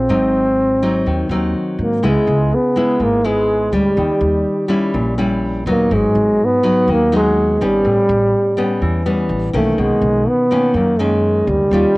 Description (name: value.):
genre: bossa nova.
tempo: 124 BPM.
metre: 4/4.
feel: straight.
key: C# dorian.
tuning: A4 = 444 Hz.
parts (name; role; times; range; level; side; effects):
dark trombone; melody; 0.0-12.0 s; G3 to C4; -15 LUFS; equal; cassette tape.
nylon-string guitar; accompaniment; 0.0-12.0 s; F#2 to E#4; -18 LUFS; left 1 dB; cassette tape.
upright bass; bass; 0.0-12.0 s; Ab1 to Ab2; -22 LUFS; equal; none.
room: moderate booth ambience, RT60 0.2 s.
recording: home recording on cassette.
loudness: -13 LUFS.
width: side -22 dB against mid.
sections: 0.0-2.0 A section; 2.0-12.0 B section.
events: none.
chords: 0.1 Ab7; 2.0 C#m7; 4.0 D#7b9; 5.9 G#m7; 7.8 A9; 9.8 Bmaj9.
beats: | 0.10 0.58 1.07 1.55 | 2.03 2.52 3.00 3.49 | 3.97 4.46 4.94 5.42 | 5.91 6.39 6.88 7.36 | 7.84 8.33 8.81 9.30 | 9.78 10.27 10.75 11.24 | 11.72.